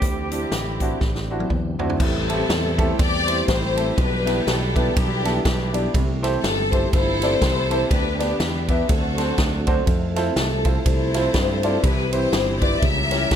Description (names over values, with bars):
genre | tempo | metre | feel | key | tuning
uptempo gospel | 122 BPM | 4/4 | swing 59% on 8ths | unclear | A4 = 440 Hz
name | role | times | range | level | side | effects
semi-hollow electric guitar | melody | 0.0-1.5 s | G4 | -32 LUFS | right 5 dB | tremolo, slapback echo
warm studio string section | melody | 0.0-13.4 s | B3 to E5 | -25 LUFS | left 3 dB | none
warm concert grand piano | accompaniment | 0.0-13.4 s | A2 to E5 | -26 LUFS | right 1 dB | none
mellow tonewheel organ | sustained chords | 0.0-13.4 s | E3 to A4 | -30 LUFS | right 3 dB | fast rotary speaker, chorus vibrato
fingered electric bass | bass | 0.0-13.4 s | G1 to G2 | -25 LUFS | equal | none
swinging big-band drum kit | drums | 0.0-13.4 s | crash cymbal, hi-hat, kick drum, ride cymbal, snare drum, toms | -23 LUFS | equal | none
room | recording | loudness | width
light reverb | none | -18 LUFS | side -9 dB against mid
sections
0.0-2.0 A section; 2.0-13.4 B section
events
drum fill 1.0-2.0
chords
0.0 D9sus4; 2.0 Am7; 4.0 Em7/B; 5.9 C6; 7.9 G/D; 8.9 D7; 9.9 Fmaj7; 11.8 Cmaj7; 12.8 C#dim7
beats
| 0.02 0.52 1.01 1.51 | 2.00 2.50 2.99 3.48 | 3.97 4.47 4.96 5.45 | 5.94 6.43 6.92 7.41 | 7.91 8.40 8.89 9.38 | 9.87 10.36 10.85 11.34 | 11.84 12.33 12.82 13.31